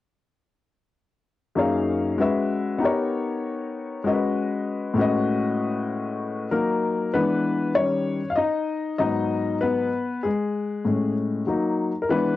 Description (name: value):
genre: hip hop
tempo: 97 BPM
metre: 4/4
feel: swing 60% on 16ths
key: F# major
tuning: A4 = 439 Hz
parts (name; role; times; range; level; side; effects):
- warm upright piano; solo; 1.6-12.4 s; F#2 to E#5; -22 LUFS; left 3 dB; cassette tape
room: moderate small room reverb, RT60 0.6 s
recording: home recording on cassette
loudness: -22 LUFS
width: side -14 dB against mid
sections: 1.6-6.5 A section; 6.5-12.4 B section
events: upright piano solo 6.5-12.4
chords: 1.6 F#69; 2.2 Eadd9; 2.8 D#7b13; 4.0 G#m7; 5.0 Amaj9; 6.5 F#6; 7.1 E7; 7.8 D#7; 9.0 G#m7; 9.9 Amaj9; 11.5 F#6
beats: | 1.57 2.19 2.81 3.43 | 4.05 4.67 5.29 5.91 | 6.52 7.14 7.76 8.38 | 9.00 9.62 10.23 10.85 | 11.47 12.09